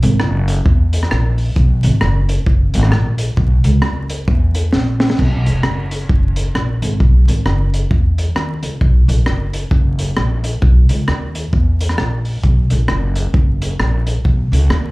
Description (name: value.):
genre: ska.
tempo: 132 BPM.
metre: 4/4.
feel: swing 60% on 8ths.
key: B major.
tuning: A4 = 440 Hz.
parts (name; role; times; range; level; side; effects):
upright bass; bass; 0.0-14.9 s; E1 to E2; -14 LUFS; equal; none.
crunchy breakbeat drum kit; drums; 0.0-14.8 s; crash cymbal, hi-hat, kick drum, rim click, snare drum; -17 LUFS; equal; none.
room: little or no reverb.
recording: live gig heard through the venue's PA, club reverb, vinyl crackle.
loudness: -13 LUFS.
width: side -22 dB against mid.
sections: 0.0-5.2 A section; 5.2-14.9 A section.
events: drum fill 4.7-5.2.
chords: none.